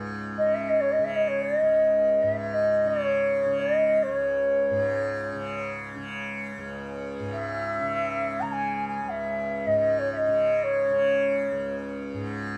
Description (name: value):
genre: indian classical, Hindustani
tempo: free time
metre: none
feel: none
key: unclear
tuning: A4 = 440 Hz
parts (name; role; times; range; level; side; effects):
- tanpura; drone; 0.0-12.6 s; C#2 to C#3; -34 LUFS; equal; none
- reedy bansuri; melody; 0.4-11.7 s; C#5 to A#5; -26 LUFS; equal; none
room: moderate studio reverb, RT60 0.8 s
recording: band playing live in one room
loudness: -26 LUFS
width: mono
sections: 0.0-12.6 A section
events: none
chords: none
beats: free time